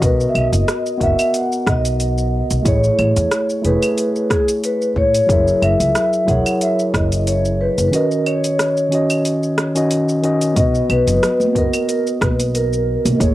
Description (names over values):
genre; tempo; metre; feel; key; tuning
sunset chillout; 91 BPM; 4/4; swing 54% on 16ths; B major; A4 = 441 Hz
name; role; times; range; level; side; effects
vibraphone with medium mallets; melody; 0.0-13.3 s; G#4 to F#5; -19 LUFS; equal; cassette tape, analog delay
mellow tine electric piano; accompaniment; 0.0-13.3 s; D#3 to F#5; -20 LUFS; equal; auto-pan, cassette tape
upright bass; bass; 0.0-13.3 s; E1 to A2; -19 LUFS; equal; none
deep house drum kit; drums; 0.0-13.3 s; claves, hi-hat, rim click, shaker; -23 LUFS; equal; small room ambience, cassette tape
electronic kick drum; drums; 0.0-13.3 s; none; -20 LUFS; equal; small room ambience, cassette tape
congas; percussion; 11.1-13.2 s; none; -23 LUFS; right 2 dB; none
room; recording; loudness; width
moderate studio ambience, RT60 0.5 s; home recording on cassette; -14 LUFS; side -15 dB against mid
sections
0.0-13.3 A section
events
none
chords
0.0 Bmaj7; 2.7 Amaj7; 5.3 F#9; 7.9 D#m7; 10.6 B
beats
| 0.02 0.68 1.34 2.00 | 2.65 3.31 3.97 4.63 | 5.29 5.95 6.61 7.27 | 7.93 8.59 9.25 9.91 | 10.57 11.23 11.89 12.54 | 13.21